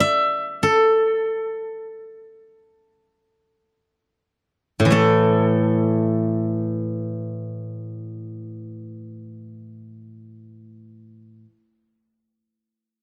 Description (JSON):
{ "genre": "chinese traditional, Chinese solo plucked strings", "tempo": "free time", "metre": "none", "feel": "none", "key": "unclear", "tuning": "A4 = 443 Hz", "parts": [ { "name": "steel-string zither", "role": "solo", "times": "0.0-11.5 s", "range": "A2 to E5", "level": "-22 LUFS", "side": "equal", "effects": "none" } ], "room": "light reverb", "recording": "dry, close 1970s-style studio recording", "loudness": "-20 LUFS", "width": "mono", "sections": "0.0-4.9 A section; 4.9-9.6 B section", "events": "slowing down 0.0-4.9", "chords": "none" }